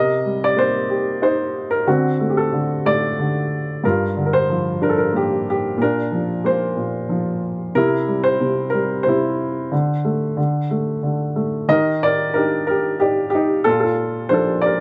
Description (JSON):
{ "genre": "acoustic folk-pop ballad", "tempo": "92 BPM", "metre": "3/4", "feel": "straight", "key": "unclear", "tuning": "A4 = 441 Hz", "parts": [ { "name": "warm upright piano", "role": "solo", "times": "0.0-14.8 s", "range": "G2 to Eb5", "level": "-20 LUFS", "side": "equal", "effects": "none" } ], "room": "moderate studio ambience, RT60 0.5 s", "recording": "none", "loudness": "-20 LUFS", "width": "mono", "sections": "0.0-11.7 A section; 11.7-14.8 B section", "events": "none", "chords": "0.0 Cm7; 1.9 D5; 3.8 Gm7; 5.8 Bbadd9; 7.8 C; 9.7 D5; 11.7 Ebmaj7; 13.7 Bbmaj7" }